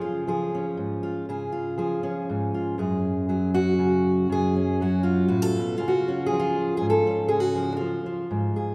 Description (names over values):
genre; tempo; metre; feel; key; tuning
folk, solo fingerstyle acoustic guitar; 119 BPM; 3/4; straight; unclear; A4 = 439 Hz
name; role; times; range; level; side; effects
fingerpicked steel-string acoustic guitar; solo; 0.0-8.7 s; F#2 to A4; -25 LUFS; equal; none
room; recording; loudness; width
wet concert hall reverb, RT60 2.5 s; recorded in a church or concert hall; -25 LUFS; mono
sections
0.0-5.8 A section; 5.8-8.7 A section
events
none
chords
0.0 C#; 2.8 F#madd9; 5.8 C#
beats
0.26 0.77 | 1.27 1.77 2.27 | 2.77 3.27 3.78 | 4.28 4.79 5.29 | 5.81 6.31 6.82 | 7.31 7.81 8.31